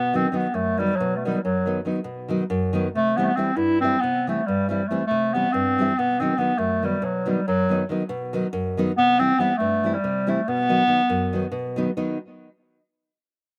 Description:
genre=balkan folk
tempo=280 BPM (eighths)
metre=7/8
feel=straight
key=B phrygian dominant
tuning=A4 = 439 Hz
part: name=warm clarinet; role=melody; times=0.0-11.5 s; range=F#3 to E4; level=-23 LUFS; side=equal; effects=slapback echo
part: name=nylon-string guitar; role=accompaniment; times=0.0-12.2 s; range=F#2 to E4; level=-28 LUFS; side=equal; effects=slapback echo
room=little or no reverb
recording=recorded outdoors, with no room sound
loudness=-23 LUFS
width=mono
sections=0.0-12.0 A section; 12.0-13.4 B section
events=none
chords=0.0 B; 3.0 C; 6.0 B; 9.0 C; 10.5 B

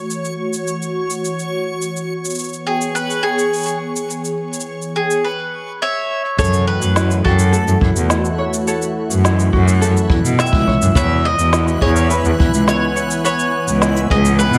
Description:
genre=folktronica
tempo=105 BPM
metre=4/4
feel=straight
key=F# minor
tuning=A4 = 439 Hz
part: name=warm analog pad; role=sustained chords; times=0.0-14.6 s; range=E3 to G#5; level=-26 LUFS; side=equal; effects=chorus
part: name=backwards swelling texture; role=texture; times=0.0-14.6 s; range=E4 to F#6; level=-32 LUFS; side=equal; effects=built-in reverb
part: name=electronic shaker and snare drum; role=drums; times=0.1-14.6 s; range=none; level=-25 LUFS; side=equal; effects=overdrive
part: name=mandolin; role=melody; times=2.7-14.6 s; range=G#4 to E5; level=-22 LUFS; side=equal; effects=vintage 12-bit sampler grit, digital delay
part: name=ukulele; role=arpeggios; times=6.4-14.6 s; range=E4 to C#5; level=-25 LUFS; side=equal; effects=digital delay
part: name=clear cello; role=bass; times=6.4-14.6 s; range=C#2 to B2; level=-18 LUFS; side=equal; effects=none
part: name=kick drum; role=drums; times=6.4-14.2 s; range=none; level=-21 LUFS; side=equal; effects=none
room=light reverb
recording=vinyl crackle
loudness=-17 LUFS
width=mono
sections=0.0-6.4 A section; 6.4-14.6 B section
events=none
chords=0.0 F#m7; 1.8 E6; 4.1 C#m7; 6.4 F#m7; 11.0 C#m7

